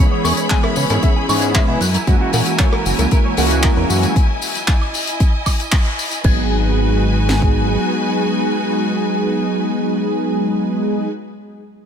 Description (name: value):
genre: nu-disco, nu disco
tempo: 115 BPM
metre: 4/4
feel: straight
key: G# minor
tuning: A4 = 440 Hz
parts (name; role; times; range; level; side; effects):
- mellow synth brass; accompaniment; 0.0-11.1 s; E3 to G#4; -19 LUFS; right 1 dB; chorus, ping-pong delay
- bright studio string section; sustained chords; 0.0-11.1 s; E4 to B5; -24 LUFS; left 2 dB; sidechain pumping
- electric guitar with an envelope filter; riff; 0.0-6.5 s; F#3 to C#6; -25 LUFS; right 2 dB; analog chorus, ping-pong delay
- fat analog bass; bass; 0.0-7.8 s; F#1 to C#3; -18 LUFS; equal; none
- damped 70s drum kit; drums; 0.2-6.3 s; crash cymbal, handclaps, hi-hat, tambourine, woodblock; -22 LUFS; left 2 dB; none
- cowbell; percussion; 0.2-3.5 s; none; -27 LUFS; left 4 dB; none
- house drum kit; drums; 0.5-7.5 s; kick drum, snare drum; -15 LUFS; equal; none
room: light reverb, small room ambience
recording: none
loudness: -14 LUFS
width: side -8 dB against mid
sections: 0.0-6.2 A section; 6.2-10.4 B section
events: drop 0.0-6.2; band accent 5.7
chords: 0.0 C#m7; 1.8 F#9; 4.2 Emaj7; 6.2 G#m7